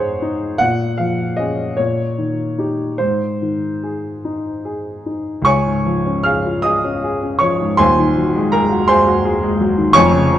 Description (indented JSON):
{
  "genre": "classical, romantic character piece for solo piano",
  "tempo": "48-56 BPM (dotted quarters)",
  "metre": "6/8",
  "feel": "rubato",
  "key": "Db major",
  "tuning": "A4 = 438 Hz",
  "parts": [
    { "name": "warm baby grand piano", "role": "solo", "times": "0.0-10.4 s", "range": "Eb1 to F6", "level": "-14 LUFS", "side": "equal", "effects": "none" }
  ],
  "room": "moderate recital hall reverb, RT60 1.6 s",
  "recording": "nothing above 10.5 kHz",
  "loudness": "-15 LUFS",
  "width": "side -11 dB against mid",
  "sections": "0.0-5.5 A section; 5.5-10.4 B section",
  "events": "none",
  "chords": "0.0 Ab; 0.6 Bbm7; 1.8 Eb7/Bb; 3.0 Ab; 5.5 Db; 7.8 Ab7/Eb"
}